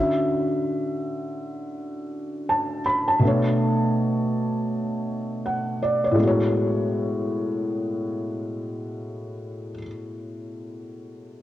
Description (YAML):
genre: hip hop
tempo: free time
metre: none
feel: none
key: A major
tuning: A4 = 444 Hz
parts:
  - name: felt-muted upright piano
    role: accompaniment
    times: 0.0-11.4 s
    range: A2 to B5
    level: -23 LUFS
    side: equal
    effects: low-pass filter
room: wet spring reverb, RT60 1.8 s, studio reverb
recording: cassette tape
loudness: -22 LUFS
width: side -13 dB against mid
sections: 0.0-6.2 A section; 6.2-9.1 B section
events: none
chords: 0.0 Dmaj9; 3.2 Bm9; 6.2 Amaj13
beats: free time